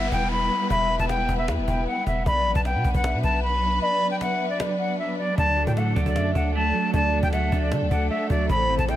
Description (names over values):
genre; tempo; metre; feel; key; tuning
hip hop, trap; 154 BPM; 4/4; half-time; unclear; A4 = 439 Hz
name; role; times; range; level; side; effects
bright concert flute; melody; 0.0-9.0 s; D5 to B5; -25 LUFS; left 1 dB; low-pass filter
gliding portamento lead; second line; 0.0-9.0 s; C5 to G5; -31 LUFS; left 1 dB; chorus, tape echo
warm symphonic string section; sustained chords; 0.0-9.0 s; E3 to B4; -30 LUFS; equal; none
long sustained 808-style bass; bass; 0.0-9.0 s; E1 to D3; -25 LUFS; equal; none
cajon; drums; 0.0-9.0 s; none; -31 LUFS; equal; none
downlifter; sound effects; 0.0-2.3 s; none; -37 LUFS; equal; none
clean electric guitar; accompaniment; 5.4-9.0 s; A2 to D4; -28 LUFS; right 6 dB; wide subtle chorus, low-pass filter
room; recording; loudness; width
studio reverb; none; -21 LUFS; side -12 dB against mid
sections
0.0-9.0 A section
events
break 3.8-5.4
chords
0.0 Em; 2.3 Bm; 5.4 D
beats
0.31 | 0.70 1.09 1.48 1.87 | 2.26 2.65 3.04 3.43 | 3.82 4.21 4.60 4.99 | 5.38 5.77 6.16 6.55 | 6.94 7.33 7.72 8.11 | 8.49 8.88